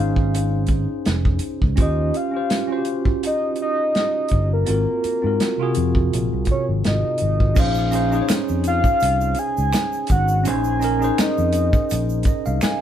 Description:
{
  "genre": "R&B, neo-soul",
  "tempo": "83 BPM",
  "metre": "4/4",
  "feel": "swing 54% on 16ths",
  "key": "Bb minor",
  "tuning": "A4 = 436 Hz",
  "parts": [
    { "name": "soft octave-layered synth lead", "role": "melody", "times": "0.0-12.6 s", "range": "Bb4 to Ab5", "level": "-23 LUFS", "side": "equal", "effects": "chorus" },
    { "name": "tine electric piano", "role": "accompaniment", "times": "0.0-12.8 s", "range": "C3 to Ab5", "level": "-24 LUFS", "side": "right 1 dB", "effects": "slow stereo tremolo" },
    { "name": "fingered electric bass", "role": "bass", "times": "0.0-12.7 s", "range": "F1 to Ab2", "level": "-22 LUFS", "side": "equal", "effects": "none" },
    { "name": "warm soul drum kit", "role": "drums", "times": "0.2-12.8 s", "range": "crash cymbal, hi-hat, kick drum, snare drum", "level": "-21 LUFS", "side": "equal", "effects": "none" },
    { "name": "egg shaker and finger snaps", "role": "percussion", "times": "7.6-12.8 s", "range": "none", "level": "-35 LUFS", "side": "right 4 dB", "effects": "none" }
  ],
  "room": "light reverb",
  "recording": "band playing live in one room",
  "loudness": "-18 LUFS",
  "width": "side -10 dB against mid",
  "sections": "0.0-7.6 A section; 7.6-12.8 B section",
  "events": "tine electric piano fill 11.9-12.8",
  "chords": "0.0 Bbm11 (rootless); 1.8 Eb13; 4.7 Ab13; 7.6 Bbm11"
}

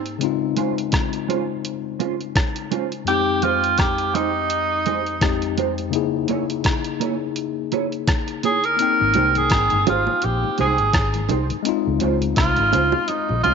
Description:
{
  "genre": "lovers rock reggae",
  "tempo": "84 BPM",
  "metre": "4/4",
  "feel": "swing 56% on 16ths",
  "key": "unclear",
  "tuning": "A4 = 440 Hz",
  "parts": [
    { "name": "tine electric piano", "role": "accompaniment", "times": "0.0-13.5 s", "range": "F2 to G5", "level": "-25 LUFS", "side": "left 11 dB", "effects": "overdrive, fast stereo tremolo, tape echo" },
    { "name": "detuned 8-bit digital drum machine", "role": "drums", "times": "0.1-13.5 s", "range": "hi-hat, kick drum, rim click", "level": "-23 LUFS", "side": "equal", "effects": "none" },
    { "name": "mellow electric guitar", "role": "stabs", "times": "0.6-13.5 s", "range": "Ab3 to Db5", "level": "-27 LUFS", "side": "right 13 dB", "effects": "ensemble chorus" },
    { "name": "warm tenor saxophone", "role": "melody", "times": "3.1-13.5 s", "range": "Eb4 to Bb4", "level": "-20 LUFS", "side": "right 2 dB", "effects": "tape echo" },
    { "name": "mellow tonewheel organ", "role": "accompaniment", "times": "9.0-13.5 s", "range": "Ab2 to G4", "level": "-32 LUFS", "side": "left 12 dB", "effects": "chorus vibrato, slow rotary speaker" },
    { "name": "vintage muted fingered electric bass", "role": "bass", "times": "9.0-13.5 s", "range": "G1 to Db2", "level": "-23 LUFS", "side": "equal", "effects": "none" },
    { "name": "bongos", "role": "percussion", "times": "9.2-13.1 s", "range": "none", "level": "-28 LUFS", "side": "right 11 dB", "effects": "none" }
  ],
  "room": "moderate plate reverb, RT60 2.3 s",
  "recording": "1960s-style stereo with parts hard left and right, nothing above 7.6 kHz",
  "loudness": "-18 LUFS",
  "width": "side -6 dB against mid",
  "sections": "0.0-13.5 A section",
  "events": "none",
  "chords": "0.2 Dbmaj7; 3.1 Fm9; 5.9 Dbm6; 8.8 Abmaj7; 11.7 Dbmaj7"
}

